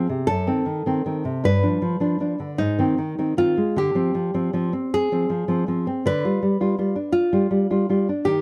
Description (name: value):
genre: romantic duo for nylon-string guitar and classical guitar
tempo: 53 BPM (dotted quarters)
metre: 6/8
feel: uneven beats, rubato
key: unclear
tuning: A4 = 441 Hz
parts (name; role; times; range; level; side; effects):
- nylon-string guitar; melody; 0.0-8.4 s; Eb4 to B4; -27 LUFS; equal; none
- nylon-string guitar; accompaniment; 0.0-8.4 s; F#2 to F4; -24 LUFS; equal; none
room: little or no reverb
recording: close, detailed microphones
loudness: -22 LUFS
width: mono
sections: 0.0-8.4 A section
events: none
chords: 0.3 F#dim7; 1.4 G7; 2.6 Ab; 3.8 Dm7b5 (rootless); 6.1 G7/D